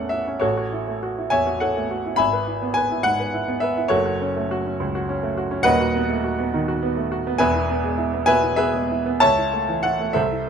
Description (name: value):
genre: classical, romantic character piece for solo piano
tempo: 68 BPM (dotted quarters)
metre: 6/8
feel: uneven beats, rubato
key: E major from 5.7 s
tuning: A4 = 439 Hz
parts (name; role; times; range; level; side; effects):
- clear baby grand piano; solo; 0.0-10.5 s; D#1 to B5; -19 LUFS; equal; none
room: little or no reverb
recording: close, detailed microphones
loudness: -19 LUFS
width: side -7 dB against mid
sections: 0.0-10.5 A section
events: none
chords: 0.4 F#m7/A; 2.2 E/G#; 3.9 F#m; 5.7 B7/D#; 7.4 E; 9.2 A/C#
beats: | 0.43 1.33 | 2.20 3.06 | 3.93 4.81 | 5.67 6.54 | 7.41 8.29 | 9.23 10.17